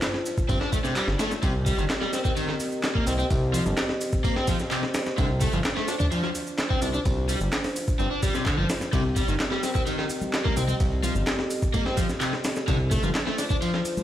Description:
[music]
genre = breakbeat, breaks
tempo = 128 BPM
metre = 4/4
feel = straight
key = C dorian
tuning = A4 = 435 Hz
[part]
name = dark analog pad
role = sustained chords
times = 0.0-14.0 s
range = C4 to Eb5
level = -32 LUFS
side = equal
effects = chorus, sidechain pumping
[part]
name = breakbeat sampler-style drum kit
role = drums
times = 0.0-14.0 s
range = kick drum, ride cymbal, snare drum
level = -27 LUFS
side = equal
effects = none
[part]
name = punchy analog drum machine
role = drums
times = 0.0-14.0 s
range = handclaps, hi-hat, shaker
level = -34 LUFS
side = equal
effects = none
[part]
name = overdriven electric guitar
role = riff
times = 0.5-13.8 s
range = C3 to D4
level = -28 LUFS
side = equal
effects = spring reverb, ping-pong delay
[part]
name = fat analog bass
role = bass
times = 0.5-13.1 s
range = G1 to C2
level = -25 LUFS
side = equal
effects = tube saturation
[part]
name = congas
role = percussion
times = 10.2-14.0 s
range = none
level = -34 LUFS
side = left 2 dB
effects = none
[sound]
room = moderate studio reverb, RT60 0.6 s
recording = played on a big sound system in a bare room, stone room reverb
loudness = -23 LUFS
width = side -12 dB against mid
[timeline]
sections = 0.0-14.0 A section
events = none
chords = 0.0 Dm7; 1.4 Cm7; 5.2 Dm7; 8.9 Cm7; 12.7 Dm7

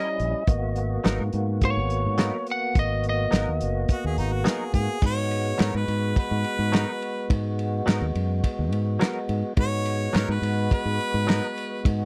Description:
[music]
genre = straight-eighth soul blues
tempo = 106 BPM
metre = 4/4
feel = straight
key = G# minor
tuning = A4 = 438 Hz
[part]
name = lightly driven lead guitar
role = melody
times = 0.0-4.2 s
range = C#5 to F#5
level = -30 LUFS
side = equal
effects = none
[part]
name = tonewheel organ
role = accompaniment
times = 0.0-12.1 s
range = G3 to F#4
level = -33 LUFS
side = equal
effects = slow rotary speaker, overdrive, chorus vibrato
[part]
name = direct-recorded clean electric guitar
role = stabs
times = 0.0-11.5 s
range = F#3 to A#4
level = -32 LUFS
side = equal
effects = ensemble chorus
[part]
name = fingered electric bass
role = bass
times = 0.2-12.1 s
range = F#1 to G#2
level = -28 LUFS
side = equal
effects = none
[part]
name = warm soul drum kit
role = drums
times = 0.2-12.0 s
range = crash cymbal, hi-hat, kick drum, ride cymbal, snare drum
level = -25 LUFS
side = equal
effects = none
[part]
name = bright harmonica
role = second line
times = 3.9-11.8 s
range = D#4 to C#5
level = -32 LUFS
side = equal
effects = none
[sound]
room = studio ambience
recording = dry, close 1970s-style studio recording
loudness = -25 LUFS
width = mono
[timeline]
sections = 0.0-5.0 A section; 5.0-12.1 B section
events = harmonica solo 5.0-12.1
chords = 0.5 G#m9

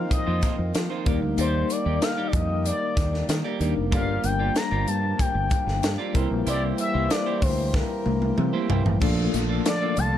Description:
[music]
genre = polished 1980s jazz-funk pop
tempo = 94 BPM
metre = 4/4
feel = straight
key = Bb major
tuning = A4 = 440 Hz
[part]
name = expressive synth lead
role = melody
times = 0.0-10.2 s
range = Bb4 to Bb5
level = -29 LUFS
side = left 3 dB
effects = chorus
[part]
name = tine electric piano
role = accompaniment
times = 0.0-10.2 s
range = F3 to Bb4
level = -29 LUFS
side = left 3 dB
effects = medium stereo tremolo, wide subtle chorus
[part]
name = hand-pumped harmonium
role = sustained chords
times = 0.0-10.2 s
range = Bb2 to A4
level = -36 LUFS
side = right 2 dB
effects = none
[part]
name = fingered electric bass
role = bass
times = 0.0-10.2 s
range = F1 to F3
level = -26 LUFS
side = equal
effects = none
[part]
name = clean electric guitar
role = riff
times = 0.1-10.2 s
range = Bb3 to D5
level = -34 LUFS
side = right 6 dB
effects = wide subtle chorus
[part]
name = crisp fusion drum kit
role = drums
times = 0.1-10.1 s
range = crash cymbal, hi-hat, kick drum, snare drum, toms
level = -26 LUFS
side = equal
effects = none
[sound]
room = studio reverb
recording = dark, warm production, lossy compression artefacts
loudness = -22 LUFS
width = side -11 dB against mid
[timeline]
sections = 0.0-9.0 A section; 9.0-10.2 B section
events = drum fill 7.7-9.0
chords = 0.0 F7sus4; 1.1 Ebmaj7; 3.9 Gm7; 6.2 C7; 9.0 Bbmaj7

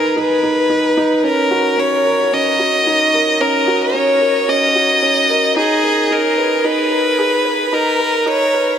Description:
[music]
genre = electronica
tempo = 111 BPM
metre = 4/4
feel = straight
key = unclear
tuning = A4 = 440 Hz
[part]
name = clear violin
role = melody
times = 0.0-8.8 s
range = Ab4 to Eb5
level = -14 LUFS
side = equal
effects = none
[part]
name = felt-muted upright piano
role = riff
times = 0.0-8.8 s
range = Db4 to Cb5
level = -18 LUFS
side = equal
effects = none
[sound]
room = wet huge ambient reverb, RT60 8.4 s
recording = high-pass filter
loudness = -12 LUFS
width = side -8 dB against mid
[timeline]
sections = 0.0-8.8 A section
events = build-up 0.0-8.8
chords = 0.0 Abmadd9; 1.2 Ebm7; 5.6 Abmadd9

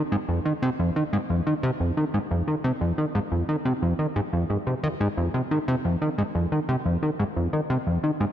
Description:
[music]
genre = ambient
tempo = 89 BPM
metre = 4/4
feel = straight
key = F minor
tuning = A4 = 435 Hz
[part]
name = plucky analog bass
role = solo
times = 0.0-8.3 s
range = F2 to Eb3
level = -23 LUFS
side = equal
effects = tape echo
[sound]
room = moderate lush hall reverb, RT60 2.9 s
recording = none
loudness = -23 LUFS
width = side -10 dB against mid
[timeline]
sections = 0.0-8.3 A section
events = none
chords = none

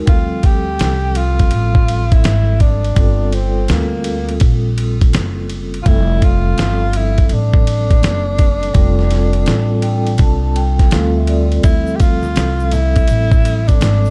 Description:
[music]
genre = hip hop, jazz-hop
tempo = 83 BPM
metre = 4/4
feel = swing 65% on 16ths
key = D minor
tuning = A4 = 440 Hz
[part]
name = vibraphone with soft mallets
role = accompaniment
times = 0.0-14.1 s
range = F3 to A5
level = -24 LUFS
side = equal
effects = none
[part]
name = upright bass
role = bass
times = 0.0-14.1 s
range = F1 to D2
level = -19 LUFS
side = equal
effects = none
[part]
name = breathy tenor saxophone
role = melody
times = 0.1-14.1 s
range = Bb3 to G4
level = -24 LUFS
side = equal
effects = none
[part]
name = dusty soul sampler-style drum kit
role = drums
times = 0.1-14.0 s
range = hi-hat, kick drum, ride cymbal, snare drum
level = -16 LUFS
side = equal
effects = none
[part]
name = tube shaker and congas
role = percussion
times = 11.6-14.1 s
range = none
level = -31 LUFS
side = equal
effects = none
[sound]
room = little or no reverb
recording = dark, warm production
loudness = -14 LUFS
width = mono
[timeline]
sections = 0.0-11.6 A section; 11.6-14.1 A section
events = vibraphone fill 9.5-11.6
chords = 0.1 Dm7; 3.0 Gm11; 5.9 Dm7/F; 8.8 Fadd9; 10.9 Dm7; 11.6 Dm11

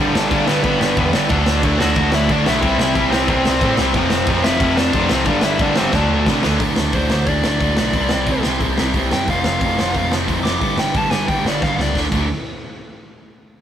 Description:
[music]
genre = punk rock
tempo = 180 BPM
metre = 4/4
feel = straight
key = unclear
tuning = A4 = 440 Hz
[part]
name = dark smooth lead guitar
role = melody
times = 0.0-12.0 s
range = B3 to D6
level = -22 LUFS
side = left 1 dB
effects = overdrive
[part]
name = distorted electric guitar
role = riff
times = 0.0-12.3 s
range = F2 to E4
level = -24 LUFS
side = left 6 dB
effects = distortion
[part]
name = overdriven electric guitar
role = riff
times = 0.0-6.6 s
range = F2 to D4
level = -21 LUFS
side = left 1 dB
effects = none
[part]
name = sludgy distorted guitar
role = riff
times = 0.0-12.3 s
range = F2 to D4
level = -21 LUFS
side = right 5 dB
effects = overdrive
[part]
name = overdriven picked electric bass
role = bass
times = 0.0-12.3 s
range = F1 to C3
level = -24 LUFS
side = equal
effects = none
[part]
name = raw garage drum kit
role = drums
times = 0.2-12.2 s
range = crash cymbal, hi-hat, kick drum, snare drum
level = -21 LUFS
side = equal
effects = none
[sound]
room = light reverb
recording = rough rehearsal-room recording, warm saturation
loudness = -15 LUFS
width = side -10 dB against mid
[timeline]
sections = 0.0-6.6 A section; 6.6-12.0 B section; 12.0-13.3 C section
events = drum fill 5.9-6.6, 11.6-12.0; lead electric guitar solo 6.6-12.0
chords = 0.0 G; 1.3 D; 2.6 C; 4.0 F; 5.3 G; 5.9 D; 7.9 C; 9.3 F; 10.6 G; 12.0 D

